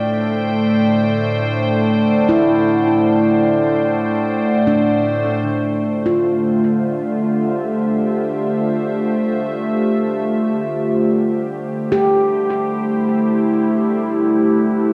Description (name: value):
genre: ambient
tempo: free time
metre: none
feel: none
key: D minor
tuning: A4 = 440 Hz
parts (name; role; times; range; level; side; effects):
- evolving wavetable pad; sustained chords; 0.0-14.9 s; A2 to G5; -19 LUFS; equal; chorus, built-in reverb
- overtone-sweeping drone; drone; 0.2-14.9 s; D3 to A3; -29 LUFS; equal; chorus, built-in reverb
- glass harmonica; texture; 0.0-5.5 s; D5; -26 LUFS; equal; none
- handpan; arpeggios; 2.3-14.0 s; D4 to G4; -22 LUFS; equal; tape echo
room: wet echo chamber reverb, RT60 2.3 s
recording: echo-heavy mix, cassette tape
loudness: -17 LUFS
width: mono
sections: 0.0-5.5 A section; 5.5-14.9 B section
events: fade-in on synth drone 5.5-14.9; filter sweep on ambient pad 5.5-14.9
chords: 0.0 Am7; 5.5 Dm11; 11.6 Am7